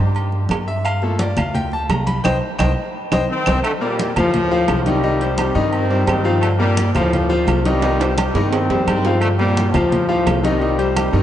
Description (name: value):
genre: latin, salsa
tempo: 172 BPM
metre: 4/4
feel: straight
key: G minor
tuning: A4 = 437 Hz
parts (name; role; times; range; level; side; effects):
- upright bass; bass; 0.0-11.2 s; C2 to G2; -20 LUFS; right 1 dB; none
- congas; percussion; 0.1-11.2 s; none; -25 LUFS; equal; none
- agogo bells and timbales; percussion; 0.2-11.1 s; none; -26 LUFS; right 5 dB; none
- claves; percussion; 0.5-11.1 s; none; -33 LUFS; right 2 dB; none
- bright grand piano; accompaniment; 0.7-11.2 s; Eb3 to B5; -20 LUFS; left 3 dB; none
- brilliant trombone section; melody; 3.3-11.2 s; A2 to C4; -20 LUFS; equal; none
room: wet cathedral reverb, RT60 6.3 s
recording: in a vast, echoing space, nothing above 10.4 kHz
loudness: -15 LUFS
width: side -11 dB against mid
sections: 0.0-3.6 A section; 3.6-11.2 B section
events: grand piano solo 0.0-3.6; band accent 2.2-3.6; drum fill 2.8-3.6, 7.8-9.2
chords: 0.0 N.C.; 0.9 Gm7; 2.2 Cm; 3.6 Gm7; 5.0 Cm; 6.4 Gm7; 7.8 Cm; 9.2 Gm7; 10.6 Cm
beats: 0.16 0.50 | 0.85 1.20 1.55 1.90 | 2.24 2.59 2.94 3.29 | 3.64 3.98 4.33 4.68 | 5.03 5.38 5.73 6.08 | 6.43 6.78 7.12 7.47 | 7.82 8.17 8.52 8.87 | 9.22 9.56 9.91 10.26 | 10.61 10.96